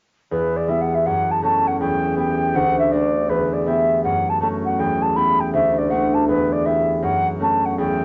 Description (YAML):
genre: celtic folk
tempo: 161 BPM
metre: 4/4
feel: swing 64% on 8ths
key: E dorian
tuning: A4 = 443 Hz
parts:
  - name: baroque flute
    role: melody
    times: 0.3-8.0 s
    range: B4 to B5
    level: -22 LUFS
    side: equal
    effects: none
  - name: concert harp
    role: accompaniment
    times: 0.3-8.0 s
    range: D2 to G4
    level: -23 LUFS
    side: equal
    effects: none
room: moderate studio reverb, RT60 0.8 s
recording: nothing above 7.5 kHz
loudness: -20 LUFS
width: mono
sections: 0.3-8.0 A section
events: none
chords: 0.3 Em; 1.1 F#m; 1.8 Em; 2.5 D; 3.3 Em; 4.0 F#m; 4.8 Em; 5.5 D; 6.3 Em; 7.0 F#m